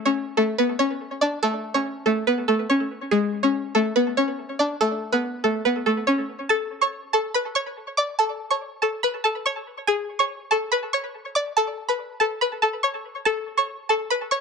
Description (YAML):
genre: hip hop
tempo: 142 BPM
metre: 4/4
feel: half-time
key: unclear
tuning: A4 = 437 Hz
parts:
  - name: string-like resonator pluck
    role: solo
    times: 0.0-14.4 s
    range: G#3 to D6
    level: -21 LUFS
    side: equal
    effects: chorus, phaser, low-pass filter, tape echo
room: moderate spring reverb, RT60 1.7 s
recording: echo-heavy mix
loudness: -21 LUFS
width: side -5 dB against mid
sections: 0.0-6.5 A section; 6.5-14.4 B section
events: none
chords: 0.0 Aadd9; 3.1 C#5; 4.8 Aadd9; 9.9 C#5; 11.6 Aadd9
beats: 0.16 0.58 1.00 | 1.43 1.85 2.27 2.69 | 3.12 3.54 3.96 4.38 | 4.80 5.23 5.65 6.07 | 6.50 6.92 7.34 7.76 | 8.19 8.61 9.03 9.45 | 9.88 10.30 10.72 11.14 | 11.57 11.99 12.41 12.83 | 13.26 13.68 14.10